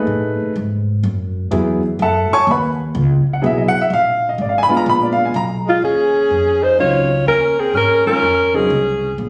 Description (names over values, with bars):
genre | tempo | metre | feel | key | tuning
jazz | 125 BPM | 4/4 | swing 66% on 8ths | F# dorian, Eb dorian from 5.8 s | A4 = 440 Hz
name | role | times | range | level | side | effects
warm upright piano | accompaniment | 0.0-8.7 s | Db3 to C#6 | -18 LUFS | equal | none
upright bass | bass | 0.1-9.3 s | G#1 to A2 | -23 LUFS | equal | none
breathy alto saxophone | melody | 5.7-9.2 s | E#4 to Db5 | -17 LUFS | equal | none
warm tenor saxophone | second line | 5.7-9.2 s | G#3 to F4 | -25 LUFS | equal | none
room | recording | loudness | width
light reverb | recorded on a phone in the room, studio reverb, compression | -16 LUFS | mono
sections
0.0-5.8 A section; 5.8-9.3 B section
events
none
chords
0.0 F#m11; 3.9 A#7b9; 5.8 Eb9sus4